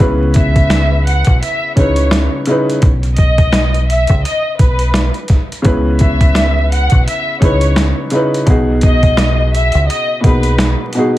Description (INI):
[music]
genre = hip hop, boom-bap hip-hop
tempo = 85 BPM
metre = 4/4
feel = swing 58% on 16ths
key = C# minor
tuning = A4 = 441 Hz
[part]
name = dark grand piano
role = accompaniment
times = 0.0-11.2 s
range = B2 to B4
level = -17 LUFS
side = equal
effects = cassette tape, high-pass filter, low-pass filter, plate reverb
[part]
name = deep dub fingered electric bass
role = bass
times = 0.0-10.7 s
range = B1 to C#2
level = -14 LUFS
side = equal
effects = none
[part]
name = boom bap sampler-style drum kit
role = drums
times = 0.0-11.1 s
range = hi-hat, kick drum, snare drum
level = -14 LUFS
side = equal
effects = none
[part]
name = warm studio violin section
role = melody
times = 0.3-10.8 s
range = B4 to F#5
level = -18 LUFS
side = equal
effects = high-pass filter, low-pass filter, plate reverb
[sound]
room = light reverb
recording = vinyl crackle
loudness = -10 LUFS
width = side -15 dB against mid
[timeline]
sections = 0.0-11.2 A section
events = none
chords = 0.0 C#m7; 2.8 B; 5.7 C#m7; 8.5 G#m7/B